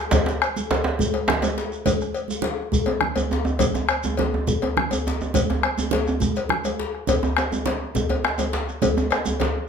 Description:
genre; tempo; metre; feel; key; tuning
west african traditional, West African drum ensemble; 138 BPM (dotted quarters); 12/8; straight; none; none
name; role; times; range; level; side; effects
bombo; percussion; 0.1-9.3 s; none; -25 LUFS; left 3 dB; none
congas; percussion; 0.1-9.5 s; none; -28 LUFS; right 6 dB; none
cowbell; percussion; 0.1-9.5 s; none; -28 LUFS; left 5 dB; none
djembe; percussion; 0.1-9.5 s; none; -29 LUFS; left 5 dB; none
djembe; percussion; 0.1-9.5 s; none; -25 LUFS; right 2 dB; none
shekere; percussion; 0.1-9.4 s; none; -33 LUFS; right 4 dB; none
room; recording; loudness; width
moderate large studio reverb, RT60 0.8 s; band playing live in one room; -20 LUFS; side -6 dB against mid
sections
0.1-9.7 A section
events
none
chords
none

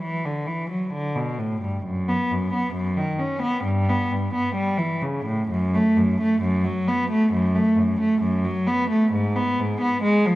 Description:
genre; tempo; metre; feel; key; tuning
classical, baroque-style suite movement for unaccompanied cello; 66 BPM; 4/4; rubato; unclear; A4 = 440 Hz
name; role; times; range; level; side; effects
rich cello; solo; 0.0-10.4 s; F#2 to C#4; -20 LUFS; equal; none
room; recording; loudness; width
wet scoring stage reverb, RT60 1.9 s; worn, warbling old tape, cassette tape, warbly pitch drift; -20 LUFS; side -16 dB against mid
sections
0.0-10.4 A section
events
none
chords
none

